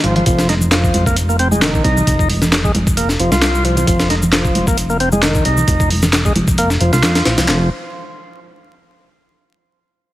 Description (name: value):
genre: breakbeat, breaks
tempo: 133 BPM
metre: 4/4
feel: swing 54% on 16ths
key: F minor pentatonic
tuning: A4 = 436 Hz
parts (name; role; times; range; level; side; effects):
- overdriven tonewheel organ; riff; 0.0-7.7 s; Eb3 to F4; -18 LUFS; equal; slow rotary speaker, tube saturation, low-pass filter, tape echo
- fat analog bass; bass; 0.0-7.7 s; F1 to F2; -17 LUFS; equal; none
- breakbeat sampler-style drum kit; drums; 0.0-7.6 s; handclaps, hi-hat, kick drum, snare drum; -17 LUFS; equal; none
- congas; percussion; 0.2-7.5 s; none; -22 LUFS; right 1 dB; none
- electronic shaker and handclaps; drums; 0.3-7.5 s; none; -23 LUFS; equal; none
room: light reverb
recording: heavily compressed radio sound, vinyl crackle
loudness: -12 LUFS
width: side -15 dB against mid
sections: 0.0-7.5 A section; 7.5-9.3 B section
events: filter sweep on analog synth bass 0.0-7.5; filter sweep on tonewheel organ 0.0-7.5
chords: 0.0 Fm; 7.5 N.C.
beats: | 0.27 0.72 1.17 1.62 | 2.07 2.52 2.97 3.42 | 3.87 4.33 4.78 5.23 | 5.68 6.13 6.58 7.03 | 7.48